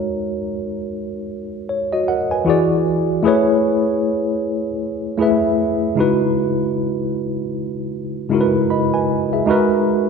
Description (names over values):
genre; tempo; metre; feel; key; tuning
R&B; 77 BPM; 4/4; swing 60% on 16ths; G# phrygian; A4 = 440 Hz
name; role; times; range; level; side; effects
mellow tine electric piano; solo; 0.0-10.1 s; C#3 to B5; -17 LUFS; equal; medium stereo tremolo
room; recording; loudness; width
wet scoring stage reverb, RT60 2.1 s; recorded in a church or concert hall; -16 LUFS; side -5 dB against mid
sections
0.0-10.1 A section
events
none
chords
0.0 G#m9; 2.5 E7; 3.2 Amaj9; 6.0 C#m11; 9.5 G#m9